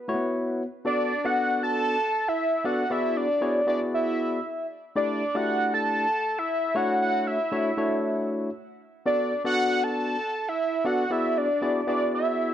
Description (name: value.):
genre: funk.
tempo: 117 BPM.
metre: 4/4.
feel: straight.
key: B minor.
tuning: A4 = 438 Hz.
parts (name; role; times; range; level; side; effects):
fat analog lead; melody; 0.0-12.5 s; B4 to A5; -25 LUFS; right 1 dB; chorus, phaser.
barky tine electric piano; accompaniment; 0.1-12.5 s; A3 to D5; -27 LUFS; left 2 dB; none.
room: moderate large studio reverb, RT60 1.2 s.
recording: dark, warm production.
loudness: -23 LUFS.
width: side -10 dB against mid.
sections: 0.9-12.5 A section.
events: none.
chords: 0.0 F#7sus4; 0.9 Bm7; 2.9 E9; 5.0 A7sus4; 6.8 Dmaj9; 9.1 Bm7; 11.1 E9.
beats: 0.34 | 0.85 1.37 1.88 2.39 | 2.90 3.42 3.93 4.44 | 4.96 5.47 5.98 6.50 | 7.01 7.52 8.03 8.55 | 9.06 9.57 10.08 10.60 | 11.11 11.62 12.14.